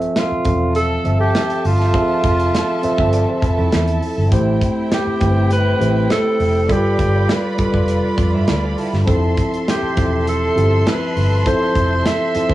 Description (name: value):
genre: lush 1970s-style soul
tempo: 101 BPM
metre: 4/4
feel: straight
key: unclear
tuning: A4 = 438 Hz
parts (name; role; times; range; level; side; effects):
- tine electric piano; accompaniment; 0.0-12.5 s; F3 to F5; -20 LUFS; equal; cassette tape
- modern studio drum kit; drums; 0.0-12.5 s; hi-hat, kick drum, snare drum; -21 LUFS; right 1 dB; cassette tape
- warm alto saxophone; melody; 0.2-12.5 s; F4 to E5; -21 LUFS; right 1 dB; cassette tape, tape echo
- vintage muted fingered electric bass; bass; 0.3-12.5 s; E1 to G2; -18 LUFS; equal; none
- warm studio violin section; second line; 0.8-12.5 s; C4 to C6; -26 LUFS; right 1 dB; cassette tape, tape echo
- electric guitar through a small old amp; riff; 3.0-4.3, 8.3-12.5 s; D4 to E5; -26 LUFS; right 5 dB; lush chorus, cassette tape
room: little or no reverb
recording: home recording on cassette, small room ambience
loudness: -14 LUFS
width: side -15 dB against mid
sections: 0.0-12.5 A section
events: none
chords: 0.0 Fmaj7; 4.3 Am7; 6.7 G9; 9.1 Fmaj7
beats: 0.15 0.75 1.34 | 1.94 2.54 3.13 3.73 | 4.32 4.92 5.51 6.11 | 6.70 7.29 7.89 8.48 | 9.08 9.67 10.27 10.86 | 11.45 12.05